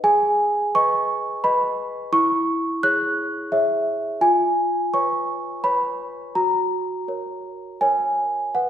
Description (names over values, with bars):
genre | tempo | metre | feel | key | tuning
classical, lullaby for celesta | 85 BPM | 3/4 | uneven beats, rubato | unclear | A4 = 440 Hz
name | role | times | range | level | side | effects
celesta | solo | 0.0-8.7 s | E4 to F#6 | -19 LUFS | equal | none
room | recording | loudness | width
wet recital hall reverb, RT60 1.6 s | recorded in a church or concert hall | -19 LUFS | side -10 dB against mid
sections
0.0-8.5 A section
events
none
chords
0.0 G#m; 2.1 C#m/E; 4.2 C#7/E#; 6.4 F#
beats
| 0.04 0.75 1.44 | 2.12 2.83 3.52 | 4.21 4.93 5.64 | 6.35 7.08 7.81 | 8.54